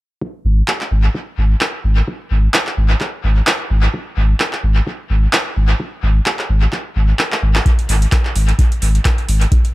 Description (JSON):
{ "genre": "acid house", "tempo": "129 BPM", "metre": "4/4", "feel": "swing 56% on 16ths", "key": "unclear", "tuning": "A4 = 441 Hz", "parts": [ { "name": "electronic kick drum", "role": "drums", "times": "0.2-9.6 s", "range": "none", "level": "-17 LUFS", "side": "equal", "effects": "overdrive, high-pass filter on kick, high-pass filter on room" }, { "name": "saturated sub bass", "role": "bass", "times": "0.4-9.5 s", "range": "G#1", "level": "-13 LUFS", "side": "equal", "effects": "sidechain pumping" }, { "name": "electro analog drum machine", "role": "drums", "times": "0.7-9.7 s", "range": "handclaps, hi-hat", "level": "-19 LUFS", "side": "equal", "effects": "overdrive, dub echo" } ], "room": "little or no reverb", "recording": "echo-heavy mix", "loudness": "-14 LUFS", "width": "side -19 dB against mid", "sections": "0.2-7.7 A section; 7.7-9.7 B section", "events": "drum fill 7.3-7.7", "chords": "none", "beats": "| 0.22 0.68 1.15 1.61 | 2.08 2.54 3.01 3.47 | 3.94 4.40 4.87 5.33 | 5.80 6.26 6.73 7.19 | 7.66 8.12 8.59 9.05 | 9.52" }